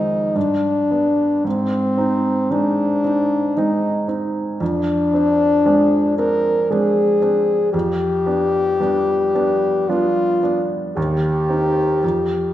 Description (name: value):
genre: classical, romantic duo for French horn and grand piano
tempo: 57 BPM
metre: 3/4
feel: rubato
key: unclear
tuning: A4 = 438 Hz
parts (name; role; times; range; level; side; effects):
- clear French horn; melody; 0.0-12.5 s; C4 to Bb4; -17 LUFS; left 2 dB; none
- clear grand piano; accompaniment; 0.0-12.5 s; Eb2 to Eb4; -21 LUFS; right 2 dB; none
room: wet recital hall reverb, RT60 1.3 s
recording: none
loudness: -16 LUFS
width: side -13 dB against mid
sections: 0.0-12.5 A section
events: none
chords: 0.4 G; 1.5 Ab; 4.6 Dm7b5/F; 7.7 G7/F; 11.0 Cm/Eb; 12.0 Bb5/F (rootless)